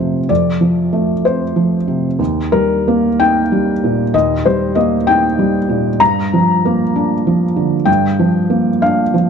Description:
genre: neoclassical minimalist piano.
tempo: 64 BPM (dotted quarters).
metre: 6/8.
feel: rubato.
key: G minor.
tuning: A4 = 440 Hz.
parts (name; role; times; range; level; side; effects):
felt-muted upright piano; solo; 0.0-9.3 s; Eb2 to Bb5; -12 LUFS; equal; none.
room: light reverb.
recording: dark, warm production, nothing above 10.5 kHz.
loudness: -12 LUFS.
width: side -6 dB against mid.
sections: 0.0-9.3 A section.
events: none.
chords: 0.0 F; 2.2 Eb; 6.0 Gm7.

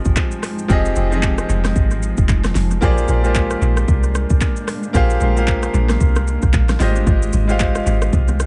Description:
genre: amapiano.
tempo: 113 BPM.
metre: 4/4.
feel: swing 58% on 16ths.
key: F dorian.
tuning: A4 = 440 Hz.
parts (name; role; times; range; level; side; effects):
clear concert grand piano; accompaniment; 0.0-8.5 s; F3 to F5; -24 LUFS; equal; analog delay.
granular cloud pad; sustained chords; 0.0-8.5 s; F3 to G5; -30 LUFS; equal; built-in reverb, sidechain pumping.
deep house drum kit; drums; 0.0-8.5 s; handclaps, hi-hat, kick drum, rim click, shaker, snare drum; -21 LUFS; equal; analog delay.
impact; sound effects; 0.5-0.7 s; none; barely audible; none; none.
deep log drum bass; bass; 0.1-8.5 s; F1 to C2; -20 LUFS; equal; none.
congas and bongos; percussion; 7.1-8.4 s; none; -30 LUFS; equal; none.
room: little or no reverb.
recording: echo-heavy mix, nothing above 10.7 kHz.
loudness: -17 LUFS.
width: mono.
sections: 0.0-8.5 A section.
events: impact 0.0-0.7.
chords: 0.0 Fm9; 2.8 Bb13; 6.8 Fm9/Ab.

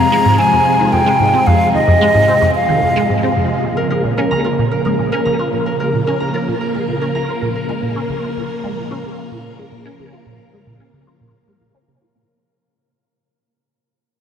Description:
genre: ambient, sequencer-driven space music.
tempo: 111 BPM.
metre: 4/4.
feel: straight.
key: Bb minor.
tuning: A4 = 441 Hz.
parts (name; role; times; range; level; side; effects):
breathy mellow silver concert flute; melody; 0.0-3.3 s; Eb5 to Bb5; -15 LUFS; equal; tape echo.
phased string machine; sustained chords; 0.0-12.3 s; C3 to Bb4; -19 LUFS; equal; ensemble chorus, phaser.
resonant blip pluck; riff; 0.0-12.2 s; F2 to F4; -19 LUFS; equal; phaser, ensemble chorus, tape echo.
wind-like tuned noise texture; texture; 4.8-12.3 s; Bb3 to Bb4; -29 LUFS; left 1 dB; built-in reverb.
concert harp; arpeggios; 3.8-9.8 s; Bb4 to Bb5; -23 LUFS; right 1 dB; auto-pan, tape echo.
room: wet huge ambient reverb, RT60 7.6 s.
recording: none.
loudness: -13 LUFS.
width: side -8 dB against mid.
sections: 0.0-3.6 A section; 3.6-12.3 B section.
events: fade-out 3.6-12.3; filter sweep on synth arpeggio sound 3.6-12.3.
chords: 0.0 Fm; 3.6 Bbm.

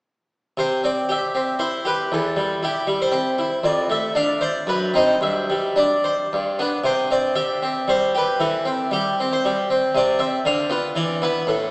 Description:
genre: classical, baroque-style suite movement for harpsichord.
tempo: 106-120 BPM.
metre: 3/4.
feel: rubato.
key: C major.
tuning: A4 = 440 Hz.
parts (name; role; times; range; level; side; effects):
harpsichord; solo; 0.6-11.7 s; E2 to F5; -18 LUFS; equal; none.
room: wet church reverb, RT60 3.6 s.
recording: heard from further back in the room, small speaker sound.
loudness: -18 LUFS.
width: side -32 dB against mid.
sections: 0.6-11.7 A section.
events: none.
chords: 0.6 C; 2.1 C/E; 3.6 Dm7/F; 4.6 Cdim/Gb; 5.2 Gsus4; 6.3 G; 6.8 C; 8.4 C/E; 9.9 N.C.; 10.4 Bdim/D; 11.0 E5.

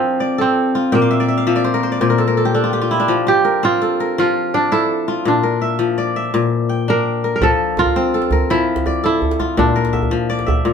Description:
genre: west african traditional, West African string and xylophone music.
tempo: 111 BPM (dotted quarters).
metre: 12/8.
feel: straight.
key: F major.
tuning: A4 = 440 Hz.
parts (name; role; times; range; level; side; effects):
kora; melody; 0.0-10.7 s; Bb3 to Bb4; -18 LUFS; right 2 dB; none.
kora; arpeggios; 0.0-10.7 s; Bb2 to G5; -17 LUFS; left 3 dB; none.
djembe; percussion; 7.4-10.6 s; none; -21 LUFS; right 2 dB; none.
room: wet small room reverb, RT60 0.5 s.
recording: band playing live in one room.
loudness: -14 LUFS.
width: side -7 dB against mid.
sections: 0.0-10.7 A section.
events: kora fill 0.9-3.1.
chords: 0.0 F; 0.9 Bb; 3.1 F; 5.3 Bb; 7.4 F; 9.6 Bb.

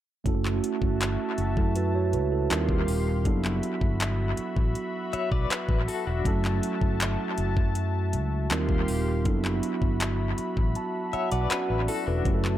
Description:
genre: contemporary R&B.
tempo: 80 BPM.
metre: 4/4.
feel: straight.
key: D major.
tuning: A4 = 439 Hz.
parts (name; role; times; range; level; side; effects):
mellow tine electric piano; accompaniment; 0.2-12.6 s; F#3 to B5; -30 LUFS; right 5 dB; phaser, analog delay.
warm analog pad; sustained chords; 0.3-12.6 s; F#4 to C6; -34 LUFS; left 1 dB; chorus.
fingered electric bass; bass; 0.3-12.6 s; Eb1 to F#2; -28 LUFS; left 1 dB; none.
smooth R&B drum kit; drums; 0.3-12.6 s; handclaps, hi-hat, kick drum; -29 LUFS; left 1 dB; analog delay.
direct-recorded clean electric guitar; arpeggios; 5.1-6.4, 11.1-12.4 s; D4 to E5; -32 LUFS; left 9 dB; tremolo, analog delay.
room: light reverb, digital ambience.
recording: echo-heavy mix.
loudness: -24 LUFS.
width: side -12 dB against mid.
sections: 0.3-12.6 A section.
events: tine electric piano fill 10.0-12.3; kick muted 10.8-12.3.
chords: 0.3 F#m7; 2.5 Eb69; 3.3 D69/F#; 6.3 F#m7; 8.5 Eb69; 9.3 D69/F#.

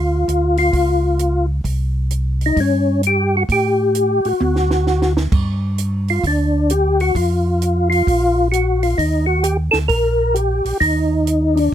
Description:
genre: soul jazz organ trio.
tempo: 131 BPM.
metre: 4/4.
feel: swing 65% on 8ths.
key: Eb major.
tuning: A4 = 439 Hz.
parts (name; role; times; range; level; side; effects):
percussive tonewheel organ; melody; 0.0-11.7 s; Db4 to Bb4; -16 LUFS; left 1 dB; slow rotary speaker, chorus vibrato.
mellow tonewheel organ; bass; 0.0-11.7 s; Bb1 to A2; -19 LUFS; equal; none.
compact cocktail drum kit; drums; 0.3-11.6 s; crash cymbal, hi-hat, kick drum, snare drum, toms; -23 LUFS; right 2 dB; none.
room: little or no reverb.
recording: close, detailed microphones.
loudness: -15 LUFS.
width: side -10 dB against mid.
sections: 0.0-11.7 A section.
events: drum fill 4.4-5.3.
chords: 0.0 Dm; 0.7 Db; 1.7 C5; 3.5 Gsus2/A; 4.4 D; 5.3 G5; 7.2 N.C.; 8.1 Bb5; 9.0 Eb.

